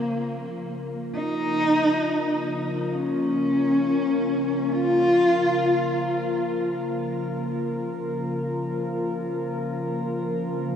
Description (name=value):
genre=ambient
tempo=free time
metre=none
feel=none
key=Bb minor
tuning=A4 = 440 Hz
part: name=dark cello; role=melody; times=0.0-6.1 s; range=Bb3 to F4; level=-22 LUFS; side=left 1 dB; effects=shimmer reverb, diffuse ambient delay
part: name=warbly tape-like pad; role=sustained chords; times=0.0-10.8 s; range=Db3 to Bb4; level=-27 LUFS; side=left 1 dB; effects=chorus, built-in reverb, shimmer reverb
room=wet lush hall reverb, RT60 3.0 s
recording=dreamy mix soaked in reverb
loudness=-22 LUFS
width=side -8 dB against mid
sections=0.0-10.8 A section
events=fade-in on ambient pad 0.0-10.8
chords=0.0 Bbm